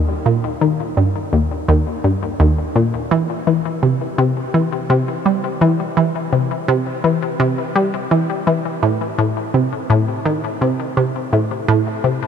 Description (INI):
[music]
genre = ambient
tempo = 84 BPM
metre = 4/4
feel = straight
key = unclear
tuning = A4 = 440 Hz
[part]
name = resonant blip pluck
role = solo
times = 0.0-12.3 s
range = Eb2 to G3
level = -15 LUFS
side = equal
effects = chorus, ping-pong delay
[sound]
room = moderate huge ambient reverb, RT60 7.5 s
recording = none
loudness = -16 LUFS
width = side -7 dB against mid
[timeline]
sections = 0.0-12.3 A section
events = none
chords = none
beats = | 0.26 0.97 1.68 2.40 | 3.11 3.83 4.54 5.26 | 5.97 6.68 7.40 8.11 | 8.83 9.54 10.26 10.97 | 11.68